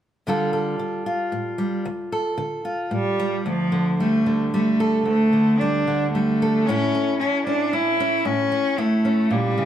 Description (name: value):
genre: folk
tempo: 112 BPM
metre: 3/4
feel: straight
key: D harmonic minor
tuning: A4 = 441 Hz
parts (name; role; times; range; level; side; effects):
- fingerpicked steel-string acoustic guitar; accompaniment; 0.3-9.7 s; D2 to A4; -24 LUFS; right 1 dB; none
- clear cello; melody; 2.9-9.7 s; F3 to E4; -20 LUFS; equal; none
room: moderate large studio reverb, RT60 1.2 s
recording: none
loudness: -19 LUFS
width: side -10 dB against mid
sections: 0.3-3.5 A section; 3.5-9.7 B section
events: none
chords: 0.3 Dm; 3.5 D5; 6.7 A